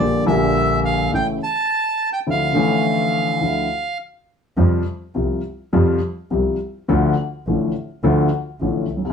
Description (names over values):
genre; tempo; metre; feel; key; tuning
tango; 104 BPM; 4/4; rubato; D minor, F major from 4.6 s; A4 = 440 Hz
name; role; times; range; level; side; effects
bandoneon; melody; 0.0-4.0 s; D5 to A5; -20 LUFS; right 2 dB; none
dark upright piano; accompaniment; 0.0-9.1 s; A1 to G4; -18 LUFS; left 2 dB; none
dark double bass; bass; 0.0-9.1 s; A1 to F2; -22 LUFS; right 2 dB; none
room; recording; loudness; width
moderate studio reverb, RT60 0.6 s; band playing live in one room; -17 LUFS; side -7 dB against mid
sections
0.0-4.6 A section; 4.6-9.1 B section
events
none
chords
0.0 Gm/Bb; 1.1 A; 2.3 Dmadd9; 4.6 Fsus2; 6.9 Dm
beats
0.56 1.12 1.70 | 2.27 2.84 3.42 4.00 | 4.58 5.16 5.74 6.31 | 6.89 7.46 8.03 8.61